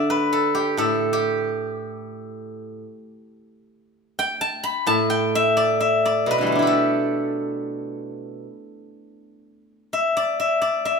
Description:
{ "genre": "chinese traditional, Chinese solo plucked strings", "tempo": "80-89 BPM", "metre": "4/4", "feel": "rubato", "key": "D zhi mode", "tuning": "A4 = 440 Hz", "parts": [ { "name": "steel-string zither", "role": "solo", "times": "0.0-11.0 s", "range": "A2 to B5", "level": "-20 LUFS", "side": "equal", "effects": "none" } ], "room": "moderate recital hall reverb, RT60 1.4 s", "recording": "minimal, uncompressed stereo recording", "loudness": "-19 LUFS", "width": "side -5 dB against mid", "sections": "0.0-11.0 A section", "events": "none", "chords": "none", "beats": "0.12 | 0.80 1.48 2.15 2.83 | 3.51 4.20 4.88 5.58 | 6.29 7.00 7.72 8.46 | 9.20 9.91 10.62" }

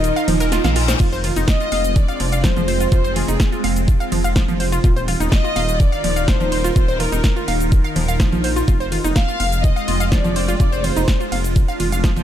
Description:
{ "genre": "progressive house", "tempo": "125 BPM", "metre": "4/4", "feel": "straight", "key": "F dorian", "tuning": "A4 = 440 Hz", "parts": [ { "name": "soft octave-layered synth lead", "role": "melody", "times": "0.0-11.3 s", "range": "Ab4 to F5", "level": "-27 LUFS", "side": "left 1 dB", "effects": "chorus, phaser, sidechain pumping, ping-pong delay" }, { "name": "clear studio violin section", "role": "second line", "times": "0.0-11.3 s", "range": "Ab4 to F5", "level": "-29 LUFS", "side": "left 1 dB", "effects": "sidechain pumping, ping-pong delay" }, { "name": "evolving wavetable pad", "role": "sustained chords", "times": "0.0-12.2 s", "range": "Eb3 to Bb4", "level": "-25 LUFS", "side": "right 2 dB", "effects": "phaser, built-in reverb, sidechain pumping" }, { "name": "dark detuned saw bass", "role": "bass", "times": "0.0-12.2 s", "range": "Eb1 to Bb1", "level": "-22 LUFS", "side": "equal", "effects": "sidechain pumping" }, { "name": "deep house drum kit", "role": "drums", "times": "0.0-12.2 s", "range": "crash cymbal, hi-hat, ride cymbal, shaker, snare drum", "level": "-26 LUFS", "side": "equal", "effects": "overdrive, sidechain pumping on hats, sidechain pumping on cymbals, sidechain pumping on perc" }, { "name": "reverse cymbal", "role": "sound effects", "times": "0.2-1.0 s", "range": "none", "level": "-28 LUFS", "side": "left 7 dB", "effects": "none" }, { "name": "analog pluck", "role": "arpeggios", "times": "0.2-12.2 s", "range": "F3 to F5", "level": "-24 LUFS", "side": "right 1 dB", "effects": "chorus, sidechain pumping, ping-pong delay" }, { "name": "congas", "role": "percussion", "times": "0.3-12.2 s", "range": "none", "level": "-29 LUFS", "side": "right 2 dB", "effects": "overdrive, sidechain pumping on perc" }, { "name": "electronic kick drum", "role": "drums", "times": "1.0-12.1 s", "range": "none", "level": "-16 LUFS", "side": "equal", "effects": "overdrive" } ], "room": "digital ambience", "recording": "dark, warm production", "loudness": "-15 LUFS", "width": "side -11 dB against mid", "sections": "0.0-12.2 A section", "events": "break 0.0-1.0; reverse cymbal 0.2-1.0; drum fill 0.5-1.0", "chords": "0.0 Ebsus2; 1.0 Fm; 4.8 Ebsus2; 8.7 Fm", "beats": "0.04 0.52 | 1.00 1.48 1.96 2.44 | 2.92 3.40 3.88 4.36 | 4.84 5.32 5.80 6.28 | 6.76 7.24 7.72 8.20 | 8.68 9.16 9.64 10.12 | 10.60 11.08 11.56 12.04" }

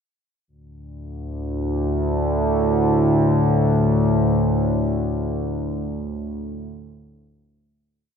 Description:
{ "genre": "ambient", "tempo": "free time", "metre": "none", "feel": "none", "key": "unclear", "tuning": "A4 = 440 Hz", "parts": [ { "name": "analog drone", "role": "solo", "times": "1.1-8.2 s", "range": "D2 to A2", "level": "-19 LUFS", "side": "equal", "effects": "chorus, tape echo" } ], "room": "wet plate reverb, RT60 2.5 s", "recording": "echo-heavy mix", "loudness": "-18 LUFS", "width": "side -7 dB against mid", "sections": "0.5-8.2 A section", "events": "fade-out 4.3-8.2", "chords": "0.5 D5", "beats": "free time" }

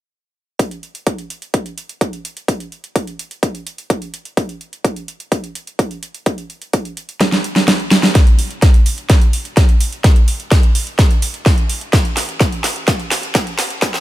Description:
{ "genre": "EDM, festival progressive house", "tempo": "127 BPM", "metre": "4/4", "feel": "straight", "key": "unclear", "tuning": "A4 = 440 Hz", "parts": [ { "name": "big-room dance drum kit", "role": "drums", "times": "0.6-14.0 s", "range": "hi-hat, snare drum", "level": "-18 LUFS", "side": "right 1 dB", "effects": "high-pass filter on hats, high-pass filter on snare, high-pass filter on room" }, { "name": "electronic kick drum", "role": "drums", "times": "0.6-13.9 s", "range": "none", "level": "-13 LUFS", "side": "equal", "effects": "high-pass filter on kick, high-pass filter on room" }, { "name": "saturated sub bass", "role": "bass", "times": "8.2-14.0 s", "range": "E1 to A1", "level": "-44 LUFS", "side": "equal", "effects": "none" } ], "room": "little or no reverb", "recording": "high-pass filter", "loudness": "-14 LUFS", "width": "side -15 dB against mid", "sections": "0.6-8.2 A section; 8.2-14.0 B section", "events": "drum fill 7.2-8.2, 8.2-14.0; build-up 8.2-14.0; filter sweep 8.2-14.0", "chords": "none", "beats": "| 0.59 1.07 1.54 2.01 | 2.48 2.96 3.43 3.90 | 4.37 4.85 5.32 5.79 | 6.26 6.74 7.21 7.68 | 8.15 8.62 9.10 9.57 | 10.04 10.52 10.99 11.46 | 11.93 12.40 12.88 13.35 | 13.82" }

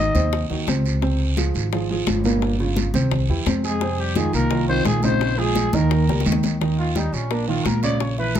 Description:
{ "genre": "Afro-Cuban jazz", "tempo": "172 BPM", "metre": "4/4", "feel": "straight", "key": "Ab major", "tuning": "A4 = 442 Hz", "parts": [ { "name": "growling trumpet", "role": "melody", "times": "0.0-0.5, 3.6-8.4 s", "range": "Db4 to Eb5", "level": "-25 LUFS", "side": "equal", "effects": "none" }, { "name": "dark trombone", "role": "second line", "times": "0.0-0.5, 3.6-6.3 s", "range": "G3 to Eb4", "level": "-27 LUFS", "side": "left 5 dB", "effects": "none" }, { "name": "warm upright piano", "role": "accompaniment", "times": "0.0-8.4 s", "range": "Bb2 to Bb5", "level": "-24 LUFS", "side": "right 3 dB", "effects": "none" }, { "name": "upright bass", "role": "bass", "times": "0.0-8.4 s", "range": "G1 to F2", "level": "-22 LUFS", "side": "equal", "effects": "none" }, { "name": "congas", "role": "percussion", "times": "0.1-8.4 s", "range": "none", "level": "-27 LUFS", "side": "left 1 dB", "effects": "none" }, { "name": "guiro", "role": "percussion", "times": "0.1-8.4 s", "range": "none", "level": "-33 LUFS", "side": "right 8 dB", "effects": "none" }, { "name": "bongos", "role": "percussion", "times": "0.3-8.4 s", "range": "none", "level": "-29 LUFS", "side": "left 10 dB", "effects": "none" } ], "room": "moderate club reverb, RT60 0.6 s", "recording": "none", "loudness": "-18 LUFS", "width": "side -10 dB against mid", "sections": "0.0-6.6 A section; 6.6-8.4 B section", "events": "drum fill 6.1-6.6; trumpet solo 6.6-8.4", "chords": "0.0 Ab7 (rootless); 1.0 Dbmaj7; 2.4 Gm7b5; 3.1 C; 3.8 F5; 5.2 Bbm9; 5.9 Eb7; 6.6 Eb", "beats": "0.33 0.67 | 1.02 1.37 1.72 2.07 | 2.42 2.77 3.12 3.46 | 3.81 4.16 4.51 4.86 | 5.21 5.56 5.91 6.26 | 6.61 6.96 7.30 7.66 | 8.00 8.35" }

